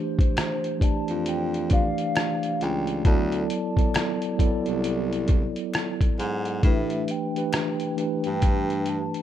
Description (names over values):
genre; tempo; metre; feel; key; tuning
lo-fi hip hop; 67 BPM; 4/4; swing 61% on 16ths; A minor; A4 = 441 Hz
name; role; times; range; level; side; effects
hollow clarinet-like synth lead; melody; 0.0-9.2 s; C5 to A5; -33 LUFS; left 1 dB; chorus, low-pass filter
mellow tine electric piano; accompaniment; 0.0-9.2 s; E3 to D5; -27 LUFS; equal; medium stereo tremolo, low-pass filter
trip hop sampler-style drum kit; drums; 0.2-9.2 s; hi-hat, kick drum, rim click; -24 LUFS; equal; vintage 12-bit sampler grit
finger snap; percussion; 0.4-7.8 s; none; -42 LUFS; left 4 dB; none
warm baritone saxophone; bass; 1.1-9.1 s; C2 to A2; -28 LUFS; equal; none
room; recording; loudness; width
digital ambience; rough home demo mix; -22 LUFS; side -11 dB against mid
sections
0.0-6.6 A section; 6.6-9.2 B section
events
none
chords
0.0 G7sus4; 3.0 D9; 6.6 Asus2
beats
0.36 1.26 2.15 | 3.05 3.95 4.84 5.74 | 6.63 7.53 8.42